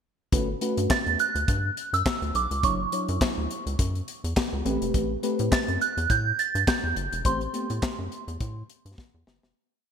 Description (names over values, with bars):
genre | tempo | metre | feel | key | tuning
early-eighties boogie funk | 104 BPM | 4/4 | swing 56% on 16ths | unclear | A4 = 439 Hz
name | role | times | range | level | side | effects
mellow FM electric piano | accompaniment | 0.3-8.2 s | F#3 to C#5 | -30 LUFS | left 1 dB | chorus, phaser
rubbery square bass | bass | 0.3-9.5 s | E1 to A2 | -29 LUFS | equal | none
modern studio drum kit | drums | 0.3-9.6 s | handclaps, hi-hat, kick drum, snare drum | -28 LUFS | left 1 dB | none
soft synth bell | melody | 0.9-8.9 s | C6 to A6 | -27 LUFS | right 5 dB | chorus, phaser
room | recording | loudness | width
moderate lush hall reverb, RT60 2.0 s | bright 1980s-style digital production | -24 LUFS | side -7 dB against mid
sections
0.3-9.6 verse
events
fade-out 7.2-9.6; drum fill 9.0-9.6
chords
0.3 Gmaj9#11; 2.6 Dmaj9/F#; 4.7 Am9